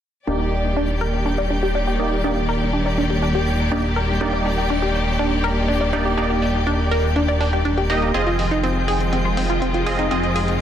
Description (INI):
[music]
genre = progressive house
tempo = 122 BPM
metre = 4/4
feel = straight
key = Eb major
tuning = A4 = 438 Hz
[part]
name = clear studio string section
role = sustained chords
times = 0.3-10.6 s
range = Eb3 to D5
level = -25 LUFS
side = left 2 dB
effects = none
[part]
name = analog pluck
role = arpeggios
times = 0.3-10.5 s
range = C4 to D5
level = -24 LUFS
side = left 1 dB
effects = chorus, phaser, ping-pong delay
[part]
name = supersaw stab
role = stabs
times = 0.3-10.6 s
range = Bb3 to Eb5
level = -25 LUFS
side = right 2 dB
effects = low-pass filter, ping-pong delay
[part]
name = fat analog bass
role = bass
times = 0.3-10.6 s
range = Eb1 to F1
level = -23 LUFS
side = equal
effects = none
[part]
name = electronic hi-hat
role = drums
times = 0.3-10.6 s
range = none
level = -37 LUFS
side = right 2 dB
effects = low-pass filter on hats
[part]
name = twinkling granular texture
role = texture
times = 0.5-10.6 s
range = G4 to G5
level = -32 LUFS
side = right 1 dB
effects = built-in reverb
[sound]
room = moderate digital room reverb, RT60 1.1 s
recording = dense, heavily limited modern master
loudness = -18 LUFS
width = side -10 dB against mid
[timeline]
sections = 0.3-10.6 A section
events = filter sweep on drum 0.3-10.6; filter sweep on synth arpeggio sound 0.3-10.6; filter sweep on supersaw synth 0.3-10.6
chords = 0.3 Ebmaj7; 8.1 Fm7